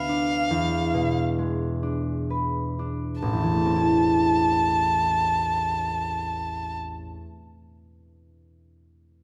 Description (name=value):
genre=classical, romantic duo for violin and harp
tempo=41-49 BPM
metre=4/4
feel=rubato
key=A minor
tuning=A4 = 441 Hz
part: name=warm violin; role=melody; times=0.0-6.8 s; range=F5 to A5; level=-27 LUFS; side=equal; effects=none
part: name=concert harp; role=accompaniment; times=0.0-7.3 s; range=A1 to B4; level=-27 LUFS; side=equal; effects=none
room=moderate scoring stage reverb, RT60 1.6 s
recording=dark, warm production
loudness=-24 LUFS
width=mono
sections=0.0-3.2 A section; 3.2-8.4 B section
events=slowing down 0.0-3.2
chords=0.0 Bdim/D; 0.5 E7; 3.2 Am